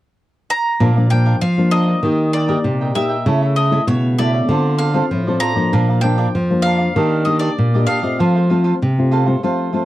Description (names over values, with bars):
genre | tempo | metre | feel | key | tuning
samba | 97 BPM | 4/4 | straight | Bb major | A4 = 443 Hz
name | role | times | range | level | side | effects
bowl-back mandolin | melody | 0.5-9.8 s | C#5 to Bb5 | -22 LUFS | equal | none
cavaquinho | accompaniment | 0.8-9.8 s | D4 to G5 | -23 LUFS | right 6 dB | none
nylon-string guitar | accompaniment | 0.8-9.8 s | F2 to A4 | -20 LUFS | left 3 dB | none
nylon-string guitar | bass | 0.8-9.3 s | Bb2 to F3 | -16 LUFS | equal | none
room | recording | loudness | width
light reverb | dry, close 1970s-style studio recording | -14 LUFS | side -15 dB against mid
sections
0.8-9.8 A section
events
break 9.4-9.8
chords
0.0 N.C.; 0.8 Bb; 2.0 Eb; 3.3 A/C#; 4.5 Dm7; 5.7 Bb; 7.0 Ebmaj7; 8.2 F